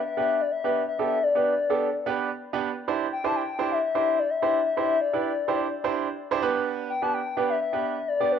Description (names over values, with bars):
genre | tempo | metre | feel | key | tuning
pop | 127 BPM | 4/4 | straight | C major | A4 = 436 Hz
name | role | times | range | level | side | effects
hollow clarinet-like synth lead | melody | 0.0-8.4 s | B4 to A5 | -25 LUFS | left 6 dB | chorus, cassette tape, analog delay
clear baby grand piano | accompaniment | 0.2-8.4 s | B3 to D5 | -27 LUFS | right 8 dB | cassette tape
room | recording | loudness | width
wet spring reverb, RT60 1.3 s, studio reverb | home recording on cassette | -23 LUFS | side -8 dB against mid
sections
0.0-8.4 A section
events
none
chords
0.0 G; 2.9 Cadd9; 6.4 G